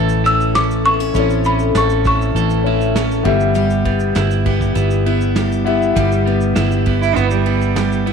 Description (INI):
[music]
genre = acoustic pop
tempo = 100 BPM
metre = 4/4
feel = straight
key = unclear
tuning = A4 = 443 Hz
[part]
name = buzzing marimba with medium mallets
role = melody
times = 0.0-3.2 s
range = B5 to E6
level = -18 LUFS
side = left 1 dB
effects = slapback echo
[part]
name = picked steel-string acoustic guitar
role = accompaniment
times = 0.0-8.1 s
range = A2 to A4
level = -21 LUFS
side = left 11 dB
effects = none
[part]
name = warm concert grand piano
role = accompaniment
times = 0.0-8.1 s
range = B3 to E5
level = -22 LUFS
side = left 7 dB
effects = none
[part]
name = electric guitar at the edge of break-up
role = arpeggios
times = 0.0-8.1 s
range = G3 to A4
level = -21 LUFS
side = right 13 dB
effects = none
[part]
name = vintage muted fingered electric bass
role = bass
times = 0.0-8.1 s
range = G1 to A1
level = -18 LUFS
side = right 2 dB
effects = none
[part]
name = soft brush drum kit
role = drums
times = 0.1-8.1 s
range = kick drum, shaker, snare drum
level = -24 LUFS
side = right 2 dB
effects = none
[part]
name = bright cello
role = second line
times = 7.0-8.1 s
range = G3 to E4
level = -18 LUFS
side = right 13 dB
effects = none
[sound]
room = moderate echo chamber reverb, RT60 1.8 s, small room ambience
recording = 1960s-style stereo with parts hard left and right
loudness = -13 LUFS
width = side -6 dB against mid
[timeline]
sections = 0.0-8.1 A section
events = none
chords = 0.0 A; 3.3 Em/G